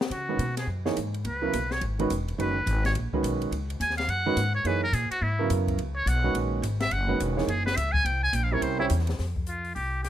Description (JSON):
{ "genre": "modal jazz", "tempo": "212 BPM", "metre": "4/4", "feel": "swing 62% on 8ths", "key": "C# dorian", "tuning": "A4 = 439 Hz", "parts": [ { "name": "open jazz drum kit", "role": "drums", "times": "0.0-10.1 s", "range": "hi-hat, kick drum, ride cymbal, rim click, snare drum", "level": "-35 LUFS", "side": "left 2 dB", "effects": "none" }, { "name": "trumpet with metal mute", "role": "melody", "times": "0.1-10.1 s", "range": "E4 to G#5", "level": "-28 LUFS", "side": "equal", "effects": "none" }, { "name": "upright bass", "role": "bass", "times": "0.1-10.1 s", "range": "E1 to C#3", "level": "-28 LUFS", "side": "equal", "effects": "none" }, { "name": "warm concert grand piano", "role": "accompaniment", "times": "0.3-8.9 s", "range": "C#3 to C#5", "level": "-29 LUFS", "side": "right 4 dB", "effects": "none" } ], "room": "little or no reverb", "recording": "close, detailed microphones", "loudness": "-24 LUFS", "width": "side -11 dB against mid", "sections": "0.1-9.2 A section", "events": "muted trumpet solo 0.1-9.2", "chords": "0.1 C#9sus4; 8.1 C7b9; 9.2 Fsus2" }